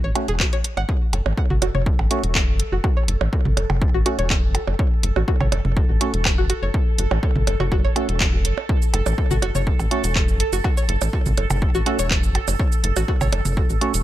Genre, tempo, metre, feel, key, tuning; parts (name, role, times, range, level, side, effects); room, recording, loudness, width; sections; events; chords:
minimal techno; 123 BPM; 4/4; straight; F# minor; A4 = 440 Hz
string-like resonator pluck; riff; 0.0-13.3 s; F#4 to F#5; -28 LUFS; left 1 dB; chorus, sidechain pumping, digital delay
rubbery square bass; bass; 0.0-14.0 s; E1 to A1; -22 LUFS; equal; tube saturation, sidechain pumping
percussive organ stab; stabs; 0.2-13.9 s; A3 to F#4; -26 LUFS; right 3 dB; wide subtle chorus, digital delay
garage drum kit; drums; 0.2-14.0 s; handclaps, hi-hat, shaker; -25 LUFS; equal
electronic percussion blips and toms; percussion; 0.2-13.5 s; -26 LUFS; right 4 dB; digital delay
electronic kick drum; drums; 0.4-13.7 s; -20 LUFS; equal
pulsing gated texture; texture; 0.9-14.0 s; A4; -30 LUFS; right 2 dB; chorus, built-in reverb, sidechain pumping
little or no reverb; -18 LUFS; side -14 dB against mid
0.0-14.0 A section
0.0 F#m